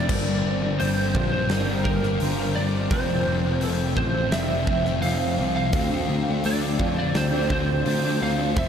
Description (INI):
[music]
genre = rock, shoegaze and dream pop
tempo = 85 BPM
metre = 4/4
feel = straight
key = unclear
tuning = A4 = 439 Hz
[part]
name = lightly driven lead guitar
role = melody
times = 0.0-8.7 s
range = Bb4 to F5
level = -27 LUFS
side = right 2 dB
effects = ensemble chorus, ping-pong delay
[part]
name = electric guitar through a small old amp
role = arpeggios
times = 0.0-8.7 s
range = Bb3 to A4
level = -32 LUFS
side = right 6 dB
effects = lush chorus, ping-pong delay
[part]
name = thick fuzz guitar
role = riff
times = 0.0-8.7 s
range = F2 to D4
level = -26 LUFS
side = left 6 dB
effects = distortion, analog chorus
[part]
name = twangy electric guitar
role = riff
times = 0.0-8.7 s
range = G2 to Bb4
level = -39 LUFS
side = right 10 dB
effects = none
[part]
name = picked electric bass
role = bass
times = 0.0-8.7 s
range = F1 to F2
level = -26 LUFS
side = right 1 dB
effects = none
[part]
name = huge arena drum kit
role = drums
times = 0.1-8.7 s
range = crash cymbal, hi-hat, kick drum, snare drum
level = -29 LUFS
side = right 1 dB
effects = none
[sound]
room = moderate huge ambient reverb, RT60 7.5 s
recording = dreamy mix soaked in reverb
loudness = -21 LUFS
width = side -8 dB against mid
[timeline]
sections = 0.1-8.7 A section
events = none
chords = 0.1 Gm7; 2.9 Fmaj7; 5.7 Dm7